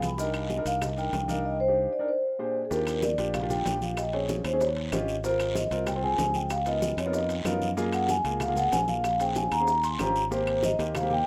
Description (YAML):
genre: Afro-Cuban jazz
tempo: 190 BPM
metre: 4/4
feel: straight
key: Eb major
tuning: A4 = 443 Hz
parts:
  - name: vibraphone with soft mallets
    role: melody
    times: 0.0-11.3 s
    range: Ab4 to C6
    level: -30 LUFS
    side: equal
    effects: tape echo
  - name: clear grand piano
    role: accompaniment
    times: 0.0-11.3 s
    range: Bb2 to C5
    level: -36 LUFS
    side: equal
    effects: none
  - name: modern bright fingered electric bass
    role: bass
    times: 0.0-11.2 s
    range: Ab1 to Gb2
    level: -35 LUFS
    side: equal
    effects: none
  - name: bongos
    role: percussion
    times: 0.0-11.1 s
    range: none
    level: -41 LUFS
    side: equal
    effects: none
  - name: congas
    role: percussion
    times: 0.0-11.3 s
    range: none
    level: -41 LUFS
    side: equal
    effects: none
  - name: guiro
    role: percussion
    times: 0.0-11.3 s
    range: none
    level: -45 LUFS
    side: equal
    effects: none
  - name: maracas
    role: percussion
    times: 0.0-11.1 s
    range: none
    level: -48 LUFS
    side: equal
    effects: none
  - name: timbales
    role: percussion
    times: 0.0-11.1 s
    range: none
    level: -44 LUFS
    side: equal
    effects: none
  - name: claves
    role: percussion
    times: 0.3-11.1 s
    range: none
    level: -42 LUFS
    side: equal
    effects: none
room: studio reverb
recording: rough home demo mix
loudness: -28 LUFS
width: mono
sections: 0.0-2.7 A section; 2.7-11.3 B section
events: none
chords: 0.2 Cm9; 2.1 Bb13; 2.7 Ebmaj9; 4.0 Bbm7; 4.6 Eb7; 5.2 Ab6; 6.5 Db13; 7.8 Gbmaj9; 9.0 Bbm7; 9.7 Eb13; 10.3 Abmaj7